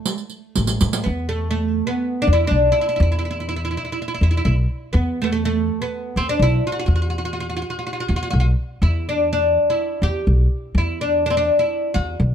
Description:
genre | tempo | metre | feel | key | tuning
Arabic maqam ensemble | 124 BPM | 4/4 | straight | E maqam bayati | A4 = 441 Hz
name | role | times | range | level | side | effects
oud | melody | 0.0-12.2 s | A3 to G4 | -21 LUFS | equal | none
riq | percussion | 0.1-1.0 s | none | -22 LUFS | right 5 dB | none
upright bass | bass | 0.6-12.3 s | A1 to A2 | -19 LUFS | equal | none
room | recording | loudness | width
light reverb | none | -18 LUFS | side -9 dB against mid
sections
0.0-1.0 A section; 1.0-12.3 B section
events
drum fill 0.6-1.0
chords
none

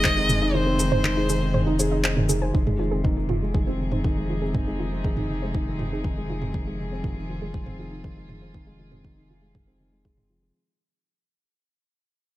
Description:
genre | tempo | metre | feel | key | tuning
piano and strings electronica | 120 BPM | 4/4 | straight | unclear | A4 = 440 Hz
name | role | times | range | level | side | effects
rich violin | melody | 0.0-2.1 s | C5 to Eb5 | -26 LUFS | left 1 dB | digital delay
rich chamber string section | sustained chords | 0.0-10.6 s | C3 to Ab4 | -34 LUFS | left 2 dB | none
soft round pluck | arpeggios | 0.0-10.5 s | Eb4 to Ab5 | -33 LUFS | right 3 dB | chorus, sidechain pumping, digital delay
felt-muted upright piano | riff | 0.0-10.6 s | Eb3 to C5 | -28 LUFS | equal | digital delay
warm sub bass | bass | 0.0-10.5 s | F1 | -29 LUFS | equal | sidechain pumping
deep house drum kit | drums | 0.0-10.3 s | handclaps, shaker, toms | -27 LUFS | right 1 dB | none
electronic kick drum | drums | 0.0-10.1 s | none | -26 LUFS | equal | none
room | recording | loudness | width
light reverb, studio reverb | none | -22 LUFS | side -15 dB against mid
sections
0.0-2.5 A section; 2.5-10.5 B section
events
drop 0.0-2.5; kick drops out 0.5-2.5; fade-out 2.5-10.5; filter sweep on sub bass 2.5-10.5; filter sweep on synth arpeggio sound 2.5-10.5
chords
0.0 Fm7

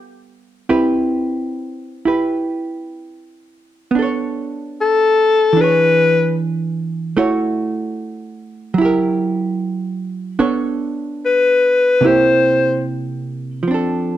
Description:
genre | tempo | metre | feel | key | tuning
jazz | 74 BPM | 4/4 | swing 66% on 8ths | unclear | A4 = 440 Hz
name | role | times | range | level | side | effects
hollow-body jazz guitar | accompaniment | 0.0-14.2 s | C3 to C#5 | -18 LUFS | right 3 dB | none
breathy alto saxophone | melody | 4.8-12.9 s | A4 to C5 | -12 LUFS | left 3 dB | none
room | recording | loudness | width
light reverb | close, detailed microphones | -15 LUFS | side -12 dB against mid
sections
0.0-13.7 A section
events
alto saxophone solo 0.0-13.7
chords
0.0 G9; 0.7 Cmaj7; 3.9 Bm9; 5.6 E6; 7.2 A6; 8.8 F#7b9; 10.4 Bm9; 12.0 C7; 13.7 F6

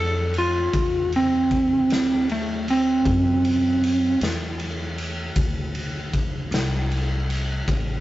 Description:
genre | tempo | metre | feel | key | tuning
slow blues | 52 BPM (dotted quarters) | 12/8 | straight | unclear | A4 = 440 Hz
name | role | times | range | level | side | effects
lightly driven lead guitar | melody | 0.0-4.2 s | A3 to A4 | -20 LUFS | right 1 dB | none
upright bass | bass | 0.0-8.0 s | A1 to F#2 | -27 LUFS | left 1 dB | none
raw garage drum kit | drums | 0.3-7.9 s | kick drum, ride cymbal, snare drum | -27 LUFS | left 1 dB | none
room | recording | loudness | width
light reverb | rough rehearsal-room recording, tube saturation, nothing above 7.8 kHz | -20 LUFS | side -15 dB against mid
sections
0.0-8.0 A section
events
lead electric guitar solo 0.0-8.0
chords
0.0 D7

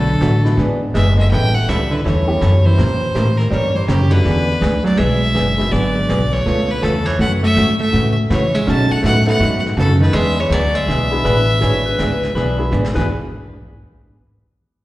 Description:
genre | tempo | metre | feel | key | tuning
country, western swing | 163 BPM | 4/4 | swing 64% on 8ths | E mixolydian | A4 = 440 Hz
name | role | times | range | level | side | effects
bright fiddle | melody | 0.0-12.7 s | G4 to A5 | -21 LUFS | equal | slapback echo
hollow-body jazz guitar | second line | 0.0-12.7 s | C#3 to C#4 | -20 LUFS | right 1 dB | slapback echo
vintage hollow-body jazz guitar | accompaniment | 0.0-13.1 s | B2 to A#4 | -22 LUFS | right 1 dB | slapback echo
warm upright piano | accompaniment | 0.0-6.1, 9.3-13.1 s | G#3 to A4 | -25 LUFS | left 2 dB | none
upright bass | bass | 0.0-13.1 s | F#1 to C#3 | -17 LUFS | equal | none
vintage brush drum kit | drums | 0.2-13.0 s | brushed snare drum, crash cymbal, hi-hat, kick drum, snare drum | -30 LUFS | equal | none
pedal steel guitar | second line | 11.3-13.1 s | B4 to C#5 | -23 LUFS | left 3 dB | slapback echo
room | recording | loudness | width
light reverb | live gig heard through the venue's PA, recital hall reverb | -13 LUFS | side -17 dB against mid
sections
0.0-13.1 A section; 13.1-14.6 B section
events
drum fill 12.7-13.1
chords
0.0 Bm7; 0.6 E9; 1.3 A9; 2.8 A#dim7; 4.3 E9; 5.7 G#m7b5; 6.5 C#7alt; 7.2 F#m7; 8.7 B9; 10.1 E9; 13.1 N.C.

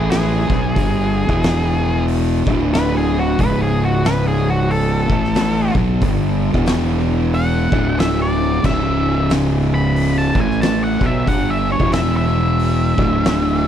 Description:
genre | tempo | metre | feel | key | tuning
stoner and doom metal | 91 BPM | 4/4 | swing 60% on 8ths | C# minor | A4 = 440 Hz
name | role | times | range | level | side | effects
octave-fuzz lead guitar | melody | 0.0-13.7 s | F#4 to B5 | -23 LUFS | equal | distortion, tape echo
fuzz guitar | riff | 0.0-13.7 s | C#2 to B3 | -18 LUFS | equal | distortion
fuzz fingered electric bass | bass | 0.0-13.7 s | C#1 to B1 | -20 LUFS | equal | overdrive, tube saturation
oversized low-tuned drum kit | drums | 0.1-13.4 s | crash cymbal, hi-hat, kick drum, snare drum | -22 LUFS | equal | none
room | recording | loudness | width
little or no reverb | none | -14 LUFS | side -9 dB against mid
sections
0.0-13.7 A section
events
lead electric guitar solo 0.0-13.7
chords
0.4 Gmaj7; 1.3 E5; 2.4 D5; 3.4 C#5; 5.0 A5; 5.7 Gmaj7; 6.5 E5; 7.7 D5; 8.6 C#m; 10.3 A5; 10.9 Gmaj7; 11.8 E5; 12.9 D5

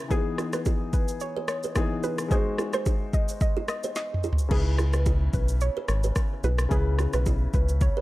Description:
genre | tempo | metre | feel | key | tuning
afrobeats | 109 BPM | 4/4 | swing 55% on 16ths | unclear | A4 = 440 Hz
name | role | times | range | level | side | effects
warm grand piano | accompaniment | 0.0-8.0 s | C#3 to B#4 | -33 LUFS | left 4 dB | none
soft round pluck | melody | 0.1-7.9 s | G#4 to D#5 | -33 LUFS | equal | chorus, tape echo
kalimba | riff | 0.1-8.0 s | D#4 to B#4 | -35 LUFS | right 5 dB | tape echo
afro-pop drum kit | drums | 0.1-8.0 s | crash cymbal, kick drum, rim click, shaker, snare drum, toms | -26 LUFS | equal | none
round analog bass | bass | 4.5-7.9 s | G#1 to C#2 | -24 LUFS | equal | none
room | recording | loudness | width
little or no reverb | dark, warm production | -23 LUFS | side -17 dB against mid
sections
0.0-8.0 A section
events
drum fill 4.0-4.5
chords
0.1 Emaj7; 2.3 G#7; 4.5 C#m7

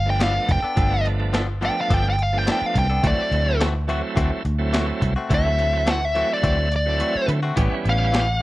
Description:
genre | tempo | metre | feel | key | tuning
straight-eighth soul blues | 106 BPM | 4/4 | straight | D mixolydian | A4 = 441 Hz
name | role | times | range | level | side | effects
dark smooth lead guitar | melody | 0.0-8.4 s | D5 to G5 | -22 LUFS | equal | overdrive
vintage muted fingered electric bass | bass | 0.0-8.4 s | F1 to D3 | -22 LUFS | equal | none
bright tonewheel organ | accompaniment | 0.1-8.2 s | E3 to E4 | -28 LUFS | right 4 dB | overdrive, fast rotary speaker
direct-recorded clean electric guitar | stabs | 0.2-8.3 s | E3 to A4 | -30 LUFS | left 4 dB | spring reverb
boom bap sampler-style drum kit | drums | 0.2-8.3 s | hi-hat, kick drum, snare drum | -24 LUFS | equal | none
room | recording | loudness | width
digital ambience | dry, close 1970s-style studio recording | -18 LUFS | side -17 dB against mid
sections
0.0-8.4 A section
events
kick and snare drop out 7.0-7.6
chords
0.0 G9; 3.0 D9; 7.6 A9

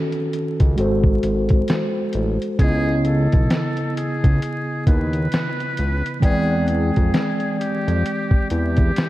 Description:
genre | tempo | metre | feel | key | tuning
lo-fi hip hop | 66 BPM | 4/4 | swing 60% on 16ths | unclear | A4 = 440 Hz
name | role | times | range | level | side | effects
mellow tine electric piano | accompaniment | 0.0-9.1 s | C#3 to G5 | -22 LUFS | equal | fast stereo tremolo, low-pass filter
lo-fi sampler-style drum kit | drums | 0.1-9.1 s | hi-hat, kick drum, snare drum | -20 LUFS | equal | none
fat analog bass | bass | 0.6-8.9 s | G#1 to E#2 | -21 LUFS | equal | none
trumpet with metal mute | melody | 2.6-9.1 s | G4 to B4 | -28 LUFS | equal | low-pass filter, tape echo
room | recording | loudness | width
moderate lush hall reverb, RT60 2.7 s | dreamy mix soaked in reverb, vinyl crackle | -17 LUFS | side -16 dB against mid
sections
0.0-9.1 A section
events
none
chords
0.0 D#m7b5; 0.8 G#7b9; 2.6 C#m9; 6.2 E7alt

